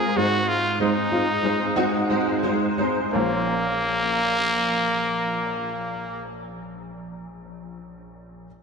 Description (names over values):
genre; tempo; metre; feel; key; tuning
pop; 85-96 BPM; 4/4; straight; Bb minor; A4 = 438 Hz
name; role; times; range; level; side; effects
growling trumpet; melody; 0.0-6.3 s; Bb3 to Ab4; -24 LUFS; equal; none
clear concert grand piano; accompaniment; 0.0-8.5 s; Bb1 to Eb5; -24 LUFS; equal; ensemble chorus
room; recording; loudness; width
wet lush hall reverb, RT60 2.6 s; bright 1980s-style digital production; -20 LUFS; side -5 dB against mid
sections
0.0-3.1 A section; 3.1-6.0 B section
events
slowing down 0.0-3.1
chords
0.2 Ab; 3.1 Bbmadd9